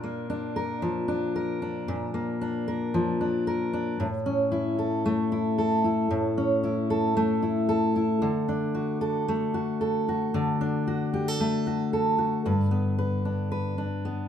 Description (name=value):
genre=pop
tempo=114 BPM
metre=4/4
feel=swing 55% on 16ths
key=D major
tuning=A4 = 443 Hz
part: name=fingerpicked steel-string acoustic guitar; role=solo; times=0.0-14.3 s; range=G2 to B4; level=-24 LUFS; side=left 1 dB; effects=none
room=moderate studio reverb, RT60 0.9 s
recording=band playing live in one room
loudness=-24 LUFS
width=side -9 dB against mid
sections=0.0-12.5 A section; 12.5-14.3 B section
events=none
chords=0.0 Bb; 4.0 A; 8.2 D; 12.5 G